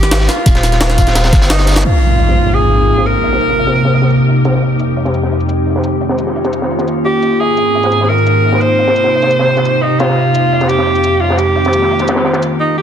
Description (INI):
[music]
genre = liquid drum and bass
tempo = 173 BPM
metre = 4/4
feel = straight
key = Ab major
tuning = A4 = 437 Hz
[part]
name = clear alto saxophone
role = melody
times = 0.0-4.5, 7.1-12.8 s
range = Eb4 to C5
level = -14 LUFS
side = right 2 dB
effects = ping-pong delay
[part]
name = warm sub bass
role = bass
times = 0.0-1.8 s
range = Eb1 to Ab1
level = -14 LUFS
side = equal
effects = none
[part]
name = jungle sampler-style drum kit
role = drums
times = 0.0-12.5 s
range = cabasa, hi-hat, snare drum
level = -20 LUFS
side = equal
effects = low-pass filter on snare, low-pass filter on hats, low-pass filter on perc, low-pass filter on room
[part]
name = crunchy breakbeat drum kit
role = drums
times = 0.1-12.5 s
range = hi-hat, snare drum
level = -20 LUFS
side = equal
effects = high-pass filter on hats, low-pass filter on hats, high-pass filter on snare, low-pass filter on snare, high-pass filter on room, low-pass filter on room
[part]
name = electronic kick drum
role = drums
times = 0.5-1.4 s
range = none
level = -10 LUFS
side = equal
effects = none
[part]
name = glassy FM pad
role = sustained chords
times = 2.4-12.6 s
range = F2 to G4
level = -14 LUFS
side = left 1 dB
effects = ensemble chorus, built-in reverb, sidechain pumping
[part]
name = impact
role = sound effects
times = 1.8-3.2 s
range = none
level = -15 LUFS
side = equal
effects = none
[sound]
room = light reverb, small room ambience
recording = dense, heavily limited modern master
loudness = -10 LUFS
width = side -8 dB against mid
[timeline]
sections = 0.0-1.8 A section; 1.8-12.8 B section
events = drum fill 1.5-1.8; band accent 1.8; impact 1.8-3.2; filter sweep on ambient pad 1.8-12.8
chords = 0.3 Ebadd9; 1.8 Ab69; 3.2 Cm7; 4.6 Fm9; 5.8 Eb9; 7.4 Ab69; 8.8 Cm7; 10.2 Fm9; 11.4 Eb9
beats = 0.12 | 0.46 0.81 1.16 1.50 | 1.85 2.20 2.54 2.89 | 3.24 3.58 3.93 4.28 | 4.62 4.97 5.32 5.66 | 6.01 6.36 6.71 7.05 | 7.40 7.75 8.09 8.44 | 8.79 9.13 9.48 9.83 | 10.17 10.52 10.87 11.21 | 11.56 11.91 12.25 12.60